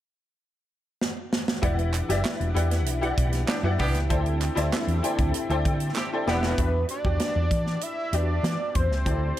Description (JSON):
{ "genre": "polished 1980s jazz-funk pop", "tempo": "97 BPM", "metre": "4/4", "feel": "straight", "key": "E minor", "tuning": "A4 = 444 Hz", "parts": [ { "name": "tight funk drum kit", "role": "drums", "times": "1.0-9.4 s", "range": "hi-hat, kick drum, snare drum", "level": "-28 LUFS", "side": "right 1 dB", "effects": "gated reverb" }, { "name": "bright baby grand piano", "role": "accompaniment", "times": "1.6-9.4 s", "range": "C4 to G5", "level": "-29 LUFS", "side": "left 2 dB", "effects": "ensemble chorus" }, { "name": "warm analog pad", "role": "sustained chords", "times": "1.6-6.6 s", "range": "D3 to F#5", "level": "-36 LUFS", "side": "right 1 dB", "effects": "chorus, phaser" }, { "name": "hollow-body short-scale fingered electric bass", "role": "bass", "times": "1.6-9.3 s", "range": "E1 to E3", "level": "-26 LUFS", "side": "equal", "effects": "none" }, { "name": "group handclap", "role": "percussion", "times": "1.9-6.1 s", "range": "none", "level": "-35 LUFS", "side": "right 5 dB", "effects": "none" }, { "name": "clear horn section", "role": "second line", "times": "3.5-6.5 s", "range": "B3 to G4", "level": "-33 LUFS", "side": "right 1 dB", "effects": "none" }, { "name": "fat analog lead", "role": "melody", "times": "6.3-9.4 s", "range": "B4 to E5", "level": "-29 LUFS", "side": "equal", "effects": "chorus, phaser" } ], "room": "little or no reverb", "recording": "none", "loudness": "-23 LUFS", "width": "side -13 dB against mid", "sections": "0.0-1.6 A section; 1.6-6.6 B section; 6.6-9.4 C section", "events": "drum fill 1.0-1.6, 6.0-6.6", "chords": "0.0 N.C.; 1.6 Em9; 4.1 D9sus4; 6.3 Em9", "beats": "0.39 1.01 | 1.63 2.25 2.87 3.49 | 4.11 4.72 5.34 5.96 | 6.58 7.20 7.82 8.44 | 9.06" }